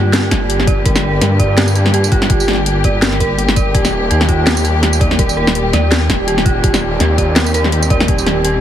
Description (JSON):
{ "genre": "half-time drum and bass", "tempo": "166 BPM", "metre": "4/4", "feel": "swing 56% on 16ths, half-time", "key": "unclear", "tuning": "A4 = 440 Hz", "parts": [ { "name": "dark studio string section", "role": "sustained chords", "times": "0.0-8.6 s", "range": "D3 to G4", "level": "-20 LUFS", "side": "left 3 dB", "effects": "sidechain pumping" }, { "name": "dark detuned synth bell", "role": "arpeggios", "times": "0.0-8.6 s", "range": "F4 to D5", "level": "-19 LUFS", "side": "right 4 dB", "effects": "chorus, tremolo, dub echo" }, { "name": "dark detuned saw bass", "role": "bass", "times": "0.0-8.6 s", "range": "Eb1 to G2", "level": "-16 LUFS", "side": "equal", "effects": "none" }, { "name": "drum and bass drum kit", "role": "drums", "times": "0.1-8.5 s", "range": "hi-hat, snare drum, tambourine", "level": "-16 LUFS", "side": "equal", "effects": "none" }, { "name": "electronic kick drum", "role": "drums", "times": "0.3-8.2 s", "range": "none", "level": "-16 LUFS", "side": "equal", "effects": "overdrive" } ], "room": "little or no reverb", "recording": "heavily compressed radio sound, multiband compression", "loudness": "-11 LUFS", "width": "side -10 dB against mid", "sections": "0.0-8.6 A section", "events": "none", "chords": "0.0 Gm; 3.7 Eb", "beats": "0.13 0.49 | 0.85 1.22 1.58 1.94 | 2.30 2.66 3.02 3.38 | 3.75 4.11 4.47 4.83 | 5.19 5.55 5.92 6.28 | 6.64 7.00 7.36 7.72 | 8.08 8.45" }